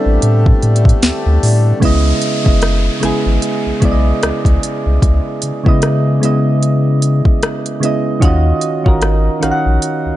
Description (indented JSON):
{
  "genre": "contemporary R&B",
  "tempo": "75 BPM",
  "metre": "4/4",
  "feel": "swing 58% on 16ths",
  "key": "unclear",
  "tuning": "A4 = 442 Hz",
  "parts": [
    { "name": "soft electric-piano-like synth keys", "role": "accompaniment", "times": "0.0-10.2 s", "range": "C#3 to F#5", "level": "-16 LUFS", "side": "right 2 dB", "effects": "chorus" },
    { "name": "pedal harmonium", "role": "sustained chords", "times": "0.0-1.8 s", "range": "D3 to D4", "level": "-21 LUFS", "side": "left 3 dB", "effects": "sidechain pumping" },
    { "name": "warm sub bass", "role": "bass", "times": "0.1-10.1 s", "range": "F#1 to C#3", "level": "-13 LUFS", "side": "equal", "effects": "none" },
    { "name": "smooth R&B drum kit", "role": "drums", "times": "0.2-10.0 s", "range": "hi-hat, kick drum, rim click, snare drum", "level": "-14 LUFS", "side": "equal", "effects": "overdrive" },
    { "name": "downlifter", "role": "sound effects", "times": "1.8-8.2 s", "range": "none", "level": "-27 LUFS", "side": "left 1 dB", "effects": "none" }
  ],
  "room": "little or no reverb",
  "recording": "nothing above 10.7 kHz",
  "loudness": "-11 LUFS",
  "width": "side -14 dB against mid",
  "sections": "0.0-1.8 A section; 1.8-10.2 B section",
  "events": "synth keys solo 0.0-1.8",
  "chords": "0.0 Am11; 1.8 C#m9; 8.2 D#m9",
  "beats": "0.22 1.02 | 1.82 2.62 3.42 4.22 | 5.02 5.82 6.62 7.42 | 8.22 9.02 9.82"
}